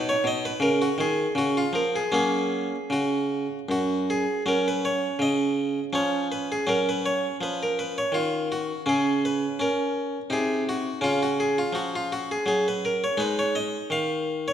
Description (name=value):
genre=classical, baroque-style suite movement for harpsichord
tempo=82 BPM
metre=3/4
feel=rubato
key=F# major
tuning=A4 = 444 Hz
part: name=harpsichord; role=solo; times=0.0-14.5 s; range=F#2 to F5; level=-23 LUFS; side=equal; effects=none
room=wet scoring stage reverb, RT60 1.8 s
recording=none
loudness=-23 LUFS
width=side -9 dB against mid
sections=0.0-4.5 A section; 4.5-14.5 B section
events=none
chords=0.0 Badd9; 0.6 F#69/C#; 1.4 C#; 2.1 F#; 4.5 F#5; 5.9 C#/E#; 6.7 F#5; 8.9 N.C.; 10.3 G#7/B#; 11.0 C#; 13.2 Ab5